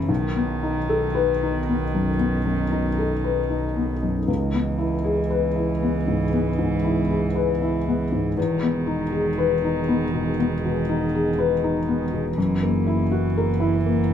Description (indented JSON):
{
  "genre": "neoclassical piano and strings",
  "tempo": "59 BPM",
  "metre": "4/4",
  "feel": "uneven beats, rubato",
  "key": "C# minor",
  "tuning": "A4 = 440 Hz",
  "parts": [
    { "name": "warm cello", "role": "second line", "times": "0.0-14.1 s", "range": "D#3 to E3", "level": "-28 LUFS", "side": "right 4 dB", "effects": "none" },
    { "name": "felt-muted upright piano", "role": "accompaniment", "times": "0.0-14.1 s", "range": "B1 to C#5", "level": "-22 LUFS", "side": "left 4 dB", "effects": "none" },
    { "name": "deep dark ambient pad", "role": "sustained chords", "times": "0.0-14.1 s", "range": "A#3 to A4", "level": "-33 LUFS", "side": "right 2 dB", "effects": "chorus, built-in reverb" },
    { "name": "rich double bass", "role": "bass", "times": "0.0-14.1 s", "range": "E1 to C#2", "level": "-27 LUFS", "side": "right 1 dB", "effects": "none" }
  ],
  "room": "light reverb",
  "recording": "band playing live in one room",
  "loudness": "-20 LUFS",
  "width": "side -9 dB against mid",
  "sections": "0.0-14.1 A section",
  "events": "none",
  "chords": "0.1 B7; 4.3 C#m7; 8.4 Emaj7; 12.4 F#7"
}